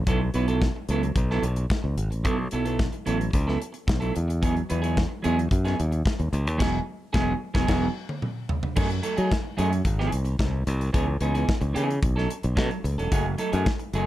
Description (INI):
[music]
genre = disco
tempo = 110 BPM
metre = 4/4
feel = straight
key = unclear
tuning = A4 = 445 Hz
[part]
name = modern bright fingered electric bass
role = bass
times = 0.0-14.1 s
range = E1 to F#3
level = -25 LUFS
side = equal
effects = none
[part]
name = semi-hollow electric guitar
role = accompaniment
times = 0.1-14.1 s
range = E3 to B4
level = -28 LUFS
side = right 3 dB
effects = none
[part]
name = modern studio drum kit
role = drums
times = 0.1-14.1 s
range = crash cymbal, hi-hat, kick drum, snare drum, toms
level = -27 LUFS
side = equal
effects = none
[sound]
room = light reverb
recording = dark, warm production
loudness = -23 LUFS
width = side -14 dB against mid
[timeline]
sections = 0.1-8.8 A section; 8.8-14.1 B section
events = band accent 6.6-8.8; drum fill 7.7-8.8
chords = 0.1 B7sus4; 4.2 Emaj9; 8.8 F#m69; 9.9 G#7b13; 10.9 C#m9; 12.0 B9; 13.1 F#m69